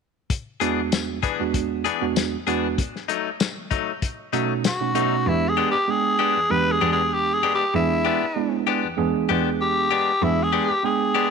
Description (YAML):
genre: straight-eighth soul blues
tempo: 97 BPM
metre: 4/4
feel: swing 54% on 16ths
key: E mixolydian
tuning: A4 = 440 Hz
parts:
  - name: warm soul drum kit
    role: drums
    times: 0.3-5.1 s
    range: hi-hat, kick drum, snare drum, tambourine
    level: -24 LUFS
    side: left 5 dB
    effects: none
  - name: tine electric piano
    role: accompaniment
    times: 0.6-11.3 s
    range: E2 to G5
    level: -25 LUFS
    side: right 10 dB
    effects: none
  - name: direct-recorded clean electric guitar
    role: stabs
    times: 0.6-11.3 s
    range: E3 to G#4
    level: -26 LUFS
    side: left 12 dB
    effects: none
  - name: growling tenor saxophone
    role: melody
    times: 4.7-11.3 s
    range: E4 to B4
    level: -21 LUFS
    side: left 1 dB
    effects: none
  - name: warm cello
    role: bass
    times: 5.3-10.5 s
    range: E2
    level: -27 LUFS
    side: left 1 dB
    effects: none
room: moderate echo chamber reverb, RT60 1.8 s, small room ambience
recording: 1960s-style stereo with parts hard left and right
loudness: -20 LUFS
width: side -6 dB against mid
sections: 0.3-5.3 A section; 5.3-11.3 B section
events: none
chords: 0.3 E7; 2.8 B7; 5.3 E7#9